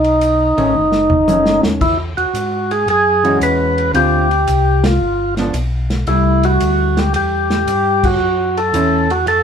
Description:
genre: soul jazz organ trio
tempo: 113 BPM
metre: 4/4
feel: swing 68% on 8ths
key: unclear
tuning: A4 = 440 Hz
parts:
  - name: percussive tonewheel organ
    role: melody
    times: 0.0-9.4 s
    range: D#4 to B4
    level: -14 LUFS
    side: equal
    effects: slow rotary speaker
  - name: mellow tonewheel organ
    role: bass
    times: 0.0-9.4 s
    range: F#1 to G#2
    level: -19 LUFS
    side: left 1 dB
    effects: slow rotary speaker
  - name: warm soul drum kit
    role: drums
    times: 0.0-9.4 s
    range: crash cymbal, hi-hat, kick drum, ride cymbal, snare drum, toms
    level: -23 LUFS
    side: equal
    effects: none
  - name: hollow-body jazz guitar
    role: accompaniment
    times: 0.6-9.1 s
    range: D3 to F#4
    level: -19 LUFS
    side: right 1 dB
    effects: none
room: wet small room reverb, RT60 0.5 s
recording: band playing live in one room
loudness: -12 LUFS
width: side -7 dB against mid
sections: 0.0-1.8 A section; 1.8-9.4 B section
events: drum fill 0.7-1.8; band accent 4.7, 7.9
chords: 0.0 B9; 1.8 E69; 3.9 Dm7; 5.0 G7; 6.1 C6; 8.2 F#m7

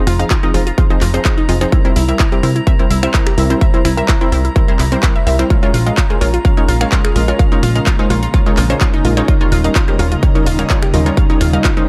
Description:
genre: progressive house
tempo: 127 BPM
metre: 4/4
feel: straight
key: unclear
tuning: A4 = 443 Hz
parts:
  - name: drifting glass-harmonics texture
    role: texture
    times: 0.0-11.9 s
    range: Bb5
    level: -32 LUFS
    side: equal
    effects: chorus, built-in reverb, sidechain pumping
  - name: glassy wavetable pluck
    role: arpeggios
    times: 0.1-11.8 s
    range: C4 to F5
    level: -23 LUFS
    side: equal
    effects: chorus, sidechain pumping, delay
  - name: plucky analog bass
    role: bass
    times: 0.1-11.6 s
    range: Eb1 to C2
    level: -18 LUFS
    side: equal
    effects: sidechain pumping
  - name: big-room dance drum kit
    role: drums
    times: 0.1-11.9 s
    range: finger snaps, handclaps, hi-hat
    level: -25 LUFS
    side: equal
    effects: overdrive
  - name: unison pluck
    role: stabs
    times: 0.2-11.9 s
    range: F3 to E5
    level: -22 LUFS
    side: equal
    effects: sidechain pumping, delay
  - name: electronic kick drum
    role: drums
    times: 0.3-11.7 s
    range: none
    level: -16 LUFS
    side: equal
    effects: overdrive
  - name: shimmering ambient pad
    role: sustained chords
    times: 6.4-11.9 s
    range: Db3 to F4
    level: -25 LUFS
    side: equal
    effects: chorus, built-in reverb, sidechain pumping
room: little or no reverb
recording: dark, warm production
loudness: -13 LUFS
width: mono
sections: 0.0-11.9 A section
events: none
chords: 0.0 Fm7; 1.7 C7; 5.5 Bbm7; 9.3 Eb7

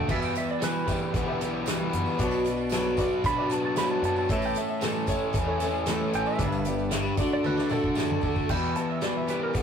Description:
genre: folk rock and heartland rock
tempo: 114 BPM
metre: 4/4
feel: straight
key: E dorian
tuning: A4 = 440 Hz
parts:
  - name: clean lap steel guitar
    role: second line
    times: 0.0-9.6 s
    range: A4 to B5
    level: -32 LUFS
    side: right 3 dB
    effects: none
  - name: picked steel-string acoustic guitar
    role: accompaniment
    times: 0.0-9.6 s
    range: E2 to A4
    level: -30 LUFS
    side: left 1 dB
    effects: none
  - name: overdriven electric guitar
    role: riff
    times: 0.0-9.6 s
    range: E2 to D4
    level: -29 LUFS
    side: equal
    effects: none
  - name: upright bass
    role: bass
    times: 0.0-9.6 s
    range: G1 to B2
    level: -36 LUFS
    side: equal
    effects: none
  - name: warm upright piano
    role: accompaniment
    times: 0.1-8.3 s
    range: E4 to E5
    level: -38 LUFS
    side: left 4 dB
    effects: none
  - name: natural country drum kit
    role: drums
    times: 0.1-9.6 s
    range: crash cymbal, hi-hat, kick drum, snare drum, toms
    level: -31 LUFS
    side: equal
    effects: none
  - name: tambourine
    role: percussion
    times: 0.2-8.4 s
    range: none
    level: -46 LUFS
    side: right 5 dB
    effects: none
room: wet booth ambience, RT60 0.2 s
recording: rough rehearsal-room recording, warm saturation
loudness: -24 LUFS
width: side -7 dB against mid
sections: 0.0-8.5 A section; 8.5-9.6 B section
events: electric slide guitar solo 0.0-8.5; drum fill 7.4-8.5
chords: 0.1 Em; 2.2 Bm; 4.3 A; 6.4 G; 7.2 D; 8.5 Em

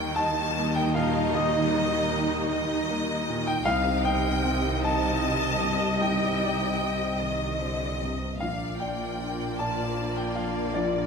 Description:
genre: cinematic, emotional film score for orchestra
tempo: 51 BPM (dotted quarters)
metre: 6/8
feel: rubato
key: unclear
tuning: A4 = 440 Hz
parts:
  - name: rich studio violin section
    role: melody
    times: 0.0-11.1 s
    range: D5 to Eb5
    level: -37 LUFS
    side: left 2 dB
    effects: none
  - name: clear studio violin section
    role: second line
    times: 0.0-11.1 s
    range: D5 to A5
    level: -33 LUFS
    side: left 2 dB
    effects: none
  - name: rich studio viola section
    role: accompaniment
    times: 0.0-11.1 s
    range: G3 to Eb5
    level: -31 LUFS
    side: right 1 dB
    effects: none
  - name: warm baby grand piano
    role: accompaniment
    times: 0.0-11.1 s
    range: Bb1 to A5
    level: -29 LUFS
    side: left 2 dB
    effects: none
  - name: dark French horn section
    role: sustained chords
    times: 0.0-11.1 s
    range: C3 to Eb5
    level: -34 LUFS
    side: equal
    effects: none
  - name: warm studio cello section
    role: bass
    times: 0.0-11.1 s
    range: Bb2 to Eb3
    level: -34 LUFS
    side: right 2 dB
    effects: none
  - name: warm studio double bass section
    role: bass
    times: 0.0-11.1 s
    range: Bb1 to Eb2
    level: -33 LUFS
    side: right 2 dB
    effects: none
room: wet recital hall reverb, RT60 1.5 s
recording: none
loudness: -24 LUFS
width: side -5 dB against mid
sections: 0.0-11.1 A section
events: none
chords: 0.0 Eb; 3.7 Cm; 8.4 Bb

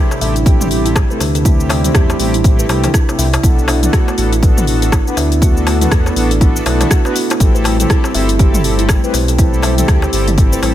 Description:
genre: afro house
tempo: 121 BPM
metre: 4/4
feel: swing 59% on 16ths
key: unclear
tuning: A4 = 440 Hz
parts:
  - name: warm analog pad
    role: sustained chords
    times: 0.1-10.7 s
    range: C3 to E4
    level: -22 LUFS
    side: left 1 dB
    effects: chorus, vintage 12-bit sampler grit, sidechain pumping
  - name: kalimba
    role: arpeggios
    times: 0.0-10.6 s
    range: E4 to E5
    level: -20 LUFS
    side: right 4 dB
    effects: sidechain pumping, ping-pong delay
  - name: mellow synth brass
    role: stabs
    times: 0.0-10.7 s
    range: A3 to B4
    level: -21 LUFS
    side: left 2 dB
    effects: chorus, sidechain pumping, ping-pong delay
  - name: house drum kit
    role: drums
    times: 0.1-10.7 s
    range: cabasa, hi-hat, rim click, toms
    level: -20 LUFS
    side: left 1 dB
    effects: overdrive
  - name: darbuka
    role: percussion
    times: 0.1-10.7 s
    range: none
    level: -24 LUFS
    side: left 2 dB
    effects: none
  - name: smooth gliding synth bass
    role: bass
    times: 0.2-10.7 s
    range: G1 to E2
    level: -16 LUFS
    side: equal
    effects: sidechain pumping
  - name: electronic kick drum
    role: drums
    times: 0.5-10.5 s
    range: none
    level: -12 LUFS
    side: equal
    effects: overdrive
room: digital ambience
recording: none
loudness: -11 LUFS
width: side -12 dB against mid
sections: 0.0-10.7 A section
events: none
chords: 0.0 C6; 3.4 Bm7; 7.4 Am7

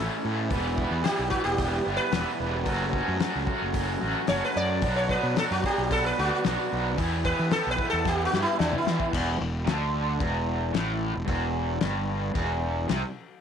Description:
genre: psychedelic rock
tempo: 112 BPM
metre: 4/4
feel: straight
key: E dorian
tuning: A4 = 440 Hz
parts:
  - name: sitar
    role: melody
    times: 0.0-9.1 s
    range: D4 to D5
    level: -28 LUFS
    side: equal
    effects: tape echo
  - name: raw garage guitar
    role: riff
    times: 0.0-13.0 s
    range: E2 to G4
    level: -28 LUFS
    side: right 1 dB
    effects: overdrive, harmonic tremolo
  - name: fuzz fingered electric bass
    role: bass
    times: 0.0-13.0 s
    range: E1 to E3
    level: -30 LUFS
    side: right 1 dB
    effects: overdrive
  - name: cloth-damped thuddy drum kit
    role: drums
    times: 0.5-13.0 s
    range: crash cymbal, hi-hat, kick drum, snare drum, toms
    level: -32 LUFS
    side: left 4 dB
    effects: none
room: light reverb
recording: 1960s-style stereo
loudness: -24 LUFS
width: side -8 dB against mid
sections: 0.0-9.1 A section; 9.1-13.4 B section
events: sitar solo 0.0-9.1; drum fill 8.1-9.1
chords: 0.0 A; 0.5 Em; 2.7 F#m; 4.8 Bm; 7.0 Em

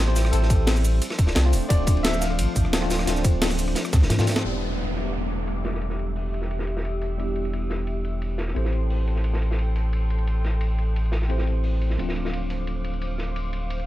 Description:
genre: liquid drum and bass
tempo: 175 BPM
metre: 4/4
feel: straight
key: E phrygian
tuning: A4 = 440 Hz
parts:
  - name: warm grand piano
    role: melody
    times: 0.0-4.1 s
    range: A4 to F5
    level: -33 LUFS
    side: left 1 dB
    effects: tape echo
  - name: tine electric piano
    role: accompaniment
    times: 0.0-13.9 s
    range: F3 to C5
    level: -31 LUFS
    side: left 1 dB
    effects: fast stereo tremolo, ping-pong delay
  - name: warm analog pad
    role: sustained chords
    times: 0.0-13.9 s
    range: F3 to E6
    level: -35 LUFS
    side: left 1 dB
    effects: lush chorus, sidechain pumping
  - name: warm sub bass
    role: bass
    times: 0.0-13.9 s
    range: D1 to D2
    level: -24 LUFS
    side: equal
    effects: tube saturation
  - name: breakbeat sampler-style drum kit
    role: drums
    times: 0.1-12.6 s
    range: hi-hat, rim click, shaker, snare drum, toms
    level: -26 LUFS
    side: equal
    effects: low-pass filter on hats, low-pass filter on perc, low-pass filter on snare, low-pass filter on toms
  - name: crunchy breakbeat drum kit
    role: drums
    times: 0.1-13.9 s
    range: hi-hat, ride cymbal, snare drum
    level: -33 LUFS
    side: equal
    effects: high-pass filter on cymbals, low-pass filter on cymbals, high-pass filter on hats, low-pass filter on hats, high-pass filter on snare, low-pass filter on snare, high-pass filter on room, low-pass filter on room
  - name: electronic kick drum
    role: drums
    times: 0.5-4.0 s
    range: none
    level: -20 LUFS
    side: equal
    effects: overdrive
  - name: downlifter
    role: sound effects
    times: 4.4-7.2 s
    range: none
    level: -33 LUFS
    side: equal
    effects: none
room: small room ambience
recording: none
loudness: -22 LUFS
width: side -15 dB against mid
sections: 0.0-4.4 A section; 4.4-13.9 B section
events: drop 0.0-4.4; drum fill 3.9-4.4; band accent 4.4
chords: 0.0 Am7; 1.0 Dm7; 4.4 Em7; 8.6 Am7; 12.0 Dm7

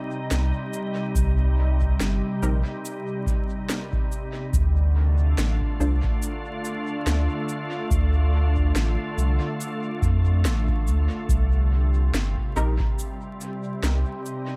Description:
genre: ambient dub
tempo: 71 BPM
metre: 4/4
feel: swing 57% on 16ths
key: C dorian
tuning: A4 = 440 Hz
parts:
  - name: soft additive organ-like pad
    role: sustained chords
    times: 0.0-14.6 s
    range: C3 to F4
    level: -32 LUFS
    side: equal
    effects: ensemble chorus, built-in reverb
  - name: warm sub bass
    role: bass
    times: 0.3-14.0 s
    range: G1 to F2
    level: -23 LUFS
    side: equal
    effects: tube saturation
  - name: electronic snare drum and cabasa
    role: drums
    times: 0.3-14.4 s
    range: none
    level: -35 LUFS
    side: equal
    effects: dub echo
  - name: electronic kick drum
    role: drums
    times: 1.2-12.9 s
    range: none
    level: -29 LUFS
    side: equal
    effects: none
  - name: filtered dub chord stab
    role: stabs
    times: 2.4-6.0, 12.6-12.8 s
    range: C4 to C5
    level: -35 LUFS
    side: equal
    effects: ensemble chorus, dub echo
room: little or no reverb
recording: vinyl crackle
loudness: -24 LUFS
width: mono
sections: 0.0-14.6 A section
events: none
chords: 0.0 Cm; 4.5 Dm; 11.3 Cm7

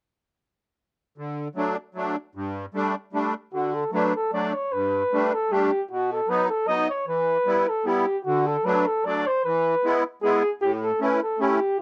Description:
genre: alpine folk, alpine dance band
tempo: 153 BPM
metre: 3/4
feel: swing 55% on 8ths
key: D major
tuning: A4 = 441 Hz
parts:
  - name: musette accordion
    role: accompaniment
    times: 1.2-11.8 s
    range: G2 to E4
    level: -28 LUFS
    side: equal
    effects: none
  - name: mellow flugelhorn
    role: melody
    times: 3.5-11.8 s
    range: F#4 to D#5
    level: -25 LUFS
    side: equal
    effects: none
room: little or no reverb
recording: dry, close 1970s-style studio recording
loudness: -24 LUFS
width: mono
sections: 1.2-3.5 A section; 3.5-11.8 B section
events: none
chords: 1.2 D; 2.4 Gsus2; 3.5 D; 4.7 Gsus2; 5.9 B; 7.1 Em; 8.3 D; 9.4 E; 10.6 A7

